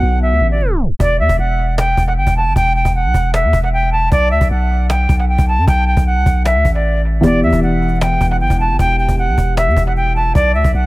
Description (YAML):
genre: hip hop, trap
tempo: 154 BPM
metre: 4/4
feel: half-time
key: E minor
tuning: A4 = 440 Hz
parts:
  - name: silver concert flute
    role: melody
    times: 0.0-10.9 s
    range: D5 to A5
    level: -17 LUFS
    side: right 1 dB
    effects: dub echo
  - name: felt-muted upright piano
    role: accompaniment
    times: 0.0-1.0, 7.2-10.4 s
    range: B2 to D5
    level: -20 LUFS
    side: left 1 dB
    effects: dub echo
  - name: airy breathy pad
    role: sustained chords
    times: 0.0-1.0 s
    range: D3 to F#4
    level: -26 LUFS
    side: left 1 dB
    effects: chorus
  - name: long sustained 808-style bass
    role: bass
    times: 0.0-10.9 s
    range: E1 to F#2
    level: -15 LUFS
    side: equal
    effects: none
  - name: cajon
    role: drums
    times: 1.0-10.8 s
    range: none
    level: -20 LUFS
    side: equal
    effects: none
room: light reverb, small room ambience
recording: echo-heavy mix, tape stop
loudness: -12 LUFS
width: side -19 dB against mid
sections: 0.0-1.0 A section; 1.0-10.9 B section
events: tape stop 0.6-1.0; hi-hats muted 1.0-7.2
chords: 0.0 Bm; 1.0 Em; 4.1 B5; 7.2 Em7; 10.4 Bm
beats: 0.22 0.61 | 1.00 1.39 1.78 2.17 | 2.56 2.95 3.34 3.73 | 4.12 4.51 4.90 5.29 | 5.68 6.07 6.46 6.84 | 7.23 7.62 8.01 8.40 | 8.79 9.18 9.57 9.96 | 10.35 10.74